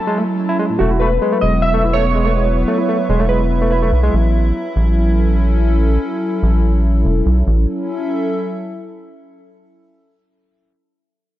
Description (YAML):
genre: IDM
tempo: 144 BPM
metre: 4/4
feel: straight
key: A major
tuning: A4 = 444 Hz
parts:
  - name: warbly lo-fi synth keys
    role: melody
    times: 0.0-4.0 s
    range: F#4 to A5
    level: -20 LUFS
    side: right 2 dB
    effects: chorus, tape echo
  - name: hollow soft pad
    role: sustained chords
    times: 0.0-9.1 s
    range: F#3 to E5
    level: -20 LUFS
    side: left 1 dB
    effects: chorus, vintage 12-bit sampler grit
  - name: barky tine electric piano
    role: arpeggios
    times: 0.1-4.1 s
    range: A2 to E4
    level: -20 LUFS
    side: right 1 dB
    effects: tape echo
  - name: rubbery square bass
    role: bass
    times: 0.8-7.7 s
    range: E1 to B1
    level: -15 LUFS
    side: equal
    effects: none
room: light reverb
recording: dark, warm production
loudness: -14 LUFS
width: side -14 dB against mid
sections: 0.8-7.5 A section; 7.5-9.1 B section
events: break 0.0-0.8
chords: 0.0 A6; 0.8 Esus2; 4.1 A6